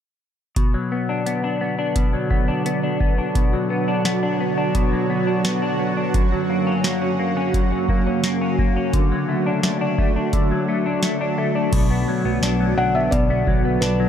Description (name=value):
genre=dream pop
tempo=86 BPM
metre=4/4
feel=straight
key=B minor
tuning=A4 = 438 Hz
part: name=shimmering ambient pad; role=sustained chords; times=1.3-14.1 s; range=C#3 to C#5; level=-24 LUFS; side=right 2 dB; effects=chorus, built-in reverb
part: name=semi-hollow electric guitar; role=arpeggios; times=0.6-14.1 s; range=F#2 to D4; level=-22 LUFS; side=left 3 dB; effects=analog chorus, ping-pong delay
part: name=booming analog drum machine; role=drums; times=0.6-14.0 s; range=crash cymbal, hi-hat, kick drum, snare drum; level=-20 LUFS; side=equal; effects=none
part: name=vintage muted fingered electric bass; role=bass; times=11.7-14.1 s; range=B1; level=-23 LUFS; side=equal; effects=none
part: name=felt-muted upright piano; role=melody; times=12.8-14.1 s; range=B4 to F#5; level=-22 LUFS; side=left 1 dB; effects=ping-pong delay
room=light reverb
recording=dark, warm production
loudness=-18 LUFS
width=side -9 dB against mid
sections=0.6-11.7 A section; 11.7-14.1 B section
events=none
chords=0.6 Bm; 6.1 F#; 8.9 D; 11.7 Bm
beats=| 0.56 1.26 1.96 2.66 | 3.35 4.05 4.75 5.45 | 6.14 6.84 7.54 8.24 | 8.94 9.63 10.33 11.03 | 11.72 12.42 13.12 13.82